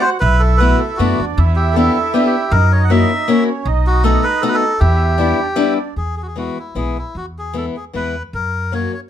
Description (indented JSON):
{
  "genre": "musette waltz",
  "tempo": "155 BPM",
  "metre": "3/4",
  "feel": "straight",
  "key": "E minor, E major from 6.0 s",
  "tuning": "A4 = 440 Hz",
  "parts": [
    { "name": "melodica", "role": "melody", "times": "0.0-9.0 s", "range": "E4 to F#5", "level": "-19 LUFS", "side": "equal", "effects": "none" },
    { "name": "mellow accordion", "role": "second line", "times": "0.0-5.9 s", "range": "C#4 to F#4", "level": "-21 LUFS", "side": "right 9 dB", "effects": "none" },
    { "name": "picked acoustic archtop guitar", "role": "accompaniment", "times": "0.0-8.9 s", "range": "E3 to G4", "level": "-18 LUFS", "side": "left 4 dB", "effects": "none" },
    { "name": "upright bass", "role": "bass", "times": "0.2-8.8 s", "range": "B1 to F#2", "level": "-16 LUFS", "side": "equal", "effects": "none" }
  ],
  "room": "light reverb",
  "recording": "none",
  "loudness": "-14 LUFS",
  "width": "side -10 dB against mid",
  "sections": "0.0-6.0 A section; 6.0-9.1 B section",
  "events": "none",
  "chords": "0.2 B7sus4; 1.4 Em7; 2.5 F#7; 3.7 B7; 4.8 Em7; 6.0 E; 8.3 F#"
}